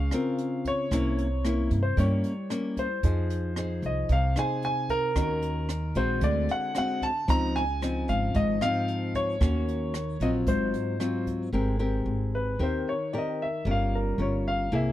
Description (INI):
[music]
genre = bossa nova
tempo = 113 BPM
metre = 4/4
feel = straight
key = Db major, Ab major from 11.5 s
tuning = A4 = 440 Hz
[part]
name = warm grand piano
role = melody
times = 0.0-14.9 s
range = Bb4 to Bb5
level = -30 LUFS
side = equal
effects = none
[part]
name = nylon-string guitar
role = accompaniment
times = 0.0-14.9 s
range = Ab2 to C5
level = -29 LUFS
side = left 2 dB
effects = none
[part]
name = upright bass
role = bass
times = 0.0-14.9 s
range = G1 to G2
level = -28 LUFS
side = equal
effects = none
[part]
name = jazz brush drum kit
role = drums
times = 0.1-11.4 s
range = hi-hat, kick drum, rim click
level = -32 LUFS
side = right 1 dB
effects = none
[sound]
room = little or no reverb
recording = dark, warm production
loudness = -25 LUFS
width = side -13 dB against mid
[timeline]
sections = 0.0-11.5 A section; 11.5-14.9 B section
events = grand piano solo 11.5-14.9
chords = 0.0 Gbmaj7#11 (rootless); 0.9 C7b9; 3.0 Fm7; 5.2 Ebm7; 6.2 D7#11; 7.3 Dbmaj9; 9.4 Ebm7; 10.5 Ab6; 11.5 Abmaj9; 13.7 Gm7b5